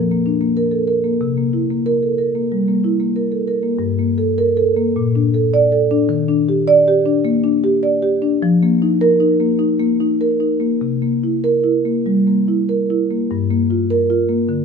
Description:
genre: classical, contemporary piece for solo marimba.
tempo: 90-106 BPM.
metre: 4/4.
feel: rubato.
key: unclear.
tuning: A4 = 440 Hz.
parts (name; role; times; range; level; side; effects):
marimba with soft mallets; solo; 0.0-14.6 s; G2 to D5; -14 LUFS; equal; none.
room: moderate stone room reverb, RT60 1.2 s.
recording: dark, warm production.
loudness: -14 LUFS.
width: side -6 dB against mid.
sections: 0.0-3.8 A section; 3.8-14.6 B section.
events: none.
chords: 0.0 Bbmaj7; 1.2 C7; 3.8 Gmadd9; 5.0 Bbmaj7; 6.1 Ebmaj7; 8.4 F7sus4; 10.8 C7; 13.3 Gm7.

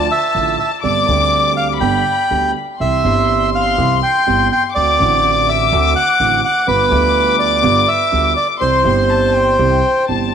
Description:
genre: tango.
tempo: 124 BPM.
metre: 4/4.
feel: rubato.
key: C major.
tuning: A4 = 440 Hz.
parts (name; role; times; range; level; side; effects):
bandoneon; melody; 0.0-10.1 s; B4 to G5; -15 LUFS; right 1 dB; none.
warm chamber violin section; second line; 0.0-10.3 s; G5 to D6; -19 LUFS; left 11 dB; none.
dark baby grand piano; accompaniment; 0.0-10.3 s; G1 to G4; -20 LUFS; right 9 dB; none.
upright bass; bass; 0.0-10.3 s; G1 to D2; -21 LUFS; left 1 dB; transformer saturation.
room: moderate plate reverb, RT60 3.4 s.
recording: 1960s-style stereo with parts hard left and right.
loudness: -12 LUFS.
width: side -8 dB against mid.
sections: 0.0-10.3 A section.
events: none.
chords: 0.0 Dm; 0.8 Gsus4; 1.8 G; 2.8 C; 4.8 D7; 6.7 G7; 8.6 C.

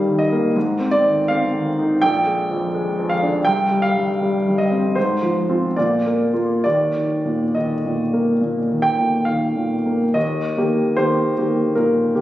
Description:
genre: classical, romantic character piece for solo piano.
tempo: 64-84 BPM.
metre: 4/4.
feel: rubato.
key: Eb major.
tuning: A4 = 440 Hz.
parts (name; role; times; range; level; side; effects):
warm baby grand piano; solo; 0.0-12.2 s; Bb1 to G5; -17 LUFS; equal; none.
room: moderate scoring stage reverb, RT60 1.9 s.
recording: recorded on a phone in the room, studio reverb, compression.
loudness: -17 LUFS.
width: side -14 dB against mid.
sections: 0.0-10.2 A section; 10.2-12.2 B section.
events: none.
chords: 0.0 Eb/G; 0.6 Fm7/Ab; 2.0 Bb7; 3.5 C5; 5.0 Fm/Ab; 5.8 Bb; 6.6 Eb5; 10.2 Eb.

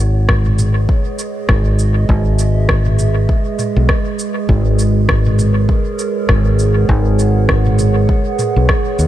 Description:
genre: ambient dub.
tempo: 100 BPM.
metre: 4/4.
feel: swing 59% on 16ths.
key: G# minor.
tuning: A4 = 440 Hz.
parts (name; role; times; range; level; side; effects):
warbly tape-like pad; sustained chords; 0.0-9.1 s; G#3 to F#5; -19 LUFS; right 4 dB; chorus, built-in reverb.
fingered electric bass; bass; 0.0-9.1 s; G#1 to D#2; -13 LUFS; equal; none.
electronic kick drum; drums; 0.3-8.8 s; none; -16 LUFS; equal; studio reverb.
organic electronic drum kit; drums; 0.3-9.1 s; cabasa, rim click, toms; -22 LUFS; equal; studio reverb, dub echo.
room: digital ambience.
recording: none.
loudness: -12 LUFS.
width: side -13 dB against mid.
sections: 0.0-9.1 A section.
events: none.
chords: 0.0 C#m7/G#; 4.5 G#m11.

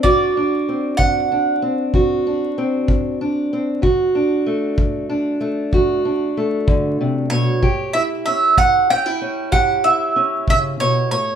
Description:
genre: acoustic country blues, solo or duo.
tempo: 63 BPM (dotted quarters).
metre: 12/8.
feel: straight.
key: D major.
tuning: A4 = 437 Hz.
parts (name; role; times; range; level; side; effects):
mandolin; melody; 0.0-11.4 s; C#5 to G5; -17 LUFS; right 3 dB; none.
fingerpicked steel-string acoustic guitar; accompaniment; 0.0-11.4 s; A2 to G4; -19 LUFS; equal; none.
kick drum; drums; 0.0-10.6 s; none; -19 LUFS; equal; none.
room: moderate large studio reverb, RT60 1.2 s.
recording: band playing live in one room, vinyl crackle.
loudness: -16 LUFS.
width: side -8 dB against mid.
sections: 0.0-11.4 A section.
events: none.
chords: 0.0 D7; 7.6 A7.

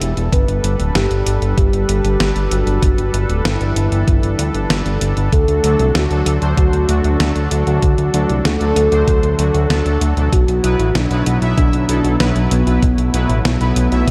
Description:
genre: synthwave.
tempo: 96 BPM.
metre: 4/4.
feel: straight.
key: unclear.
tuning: A4 = 438 Hz.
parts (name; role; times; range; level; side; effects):
soft octave-layered synth lead; melody; 0.0-14.1 s; B3 to B4; -23 LUFS; equal; chorus, digital delay.
warm analog pad; sustained chords; 0.0-14.1 s; D3 to B4; -27 LUFS; equal; chorus, tremolo, sidechain pumping, shimmer reverb.
fat analog bass; bass; 0.0-14.1 s; D1 to D2; -19 LUFS; equal; none.
clean 12-bit digital drum machine; drums; 0.0-14.1 s; hi-hat, snare drum; -25 LUFS; equal; none.
electronic kick drum; drums; 0.3-14.1 s; none; -18 LUFS; equal; none.
analog synth brass; stabs; 5.6-14.1 s; B2 to E5; -24 LUFS; equal; chorus, cassette tape.
room: moderate lush hall reverb, RT60 2.6 s.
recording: dark, warm production.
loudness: -16 LUFS.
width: mono.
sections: 0.0-14.1 A section.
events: none.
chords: 0.3 Gadd9; 5.3 D; 10.3 Bsus4.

